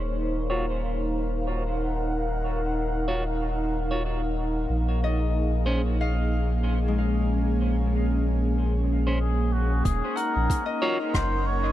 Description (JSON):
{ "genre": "ambient dub", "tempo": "93 BPM", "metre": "4/4", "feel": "swing 58% on 16ths", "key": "Eb dorian", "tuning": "A4 = 443 Hz", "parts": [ { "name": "airy breathy pad", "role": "sustained chords", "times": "0.0-11.7 s", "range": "Bb3 to Gb5", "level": "-29 LUFS", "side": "equal", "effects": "chorus" }, { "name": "warm sub bass", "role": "bass", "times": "0.0-11.7 s", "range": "Eb1 to Bb1", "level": "-26 LUFS", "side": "equal", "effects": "none" }, { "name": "clean electric guitar", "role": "stabs", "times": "0.5-11.0 s", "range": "Db4 to Db5", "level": "-34 LUFS", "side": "equal", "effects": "low-pass filter, dub echo" }, { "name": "Celtic harp", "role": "arpeggios", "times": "5.0-11.7 s", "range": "Ab3 to Gb5", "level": "-33 LUFS", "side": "left 6 dB", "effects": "dub echo" }, { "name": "trumpet with cup mute", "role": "melody", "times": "9.2-11.7 s", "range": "Gb4 to Db5", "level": "-31 LUFS", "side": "equal", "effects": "dub echo" }, { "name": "electronic kick drum", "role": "drums", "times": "9.9-11.3 s", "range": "none", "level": "-26 LUFS", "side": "equal", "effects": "none" }, { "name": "vintage brush drum kit", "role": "drums", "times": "9.9-11.3 s", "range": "hi-hat, rim click", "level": "-36 LUFS", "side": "left 2 dB", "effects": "dub echo" } ], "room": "light reverb", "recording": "none", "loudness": "-23 LUFS", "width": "side -13 dB against mid", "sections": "0.0-9.9 A section; 9.9-11.7 B section", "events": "filter sweep on clean electric guitar 0.0-9.9", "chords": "0.0 Ebm7; 4.7 Bbm7; 9.9 Ebm7" }